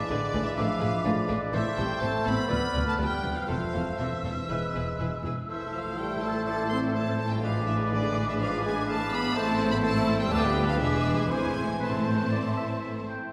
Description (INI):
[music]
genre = quick classical-period movement for symphony orchestra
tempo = 123 BPM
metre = 4/4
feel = straight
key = A minor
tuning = A4 = 440 Hz
[part]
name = rich chamber violin section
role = melody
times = 0.0-13.1 s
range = D5 to C6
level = -37 LUFS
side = equal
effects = none
[part]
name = bright clarinet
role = second line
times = 0.0-13.1 s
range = B4 to E#5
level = -40 LUFS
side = equal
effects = none
[part]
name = mellow hollow flute section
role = second line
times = 0.0-13.1 s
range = C6 to F6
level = -38 LUFS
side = equal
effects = none
[part]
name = warm oboe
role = second line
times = 0.0-13.3 s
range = B4 to G5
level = -39 LUFS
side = equal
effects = none
[part]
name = mellow bassoon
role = accompaniment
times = 0.0-13.0 s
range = E3 to B3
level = -39 LUFS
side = equal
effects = none
[part]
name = dark French horn section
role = sustained chords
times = 0.0-13.1 s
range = D3 to C4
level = -36 LUFS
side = equal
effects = none
[part]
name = clear chamber violin section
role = second line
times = 0.1-13.1 s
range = E4 to D5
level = -41 LUFS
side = equal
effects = none
[part]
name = rich chamber viola section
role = accompaniment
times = 0.1-13.1 s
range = D3 to E4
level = -38 LUFS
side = equal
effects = none
[part]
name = rich chamber double bass section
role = bass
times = 0.1-13.1 s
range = E1 to D2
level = -36 LUFS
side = equal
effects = none
[part]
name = rich studio cello section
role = bass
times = 0.1-13.1 s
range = D2 to A2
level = -36 LUFS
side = equal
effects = none
[sound]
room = wet concert hall reverb, RT60 2.1 s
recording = heard from further back in the room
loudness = -28 LUFS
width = mono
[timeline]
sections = 0.0-13.3 A section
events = none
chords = 0.0 G#dim7/A; 1.5 Am; 2.5 Bdim/D; 3.5 Am/E; 4.5 E; 5.5 Am; 7.4 G#dim7/A; 9.4 Am; 10.3 Bdim/D; 10.8 E7; 11.3 Am